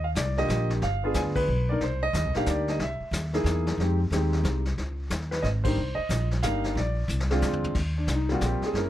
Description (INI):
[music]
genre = jazz piano trio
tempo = 182 BPM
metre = 3/4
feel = swing 63% on 8ths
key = Eb major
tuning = A4 = 441 Hz
[part]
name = warm baby grand piano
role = melody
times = 0.0-8.9 s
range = D3 to Ab5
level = -28 LUFS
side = equal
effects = none
[part]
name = upright bass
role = bass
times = 0.0-8.9 s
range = Gb1 to F2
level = -27 LUFS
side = equal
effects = none
[part]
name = vintage brush drum kit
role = drums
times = 0.2-8.9 s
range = brushed snare drum, crash cymbal, hi-hat, kick drum, snare drum, toms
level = -33 LUFS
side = left 2 dB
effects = none
[sound]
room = little or no reverb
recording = close, detailed microphones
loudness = -24 LUFS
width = side -13 dB against mid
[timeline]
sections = 0.0-7.8 A section; 7.8-8.9 B section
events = band accent 1.3, 5.6; drum fill 7.1-7.8; grand piano solo 7.8-8.9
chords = 0.0 Ebmaj9; 0.8 G7b9; 1.8 Cm7; 2.8 C7alt; 3.8 Fm7; 4.8 Dbsus2; 5.8 Cm9; 6.8 Bb9; 7.8 Eb6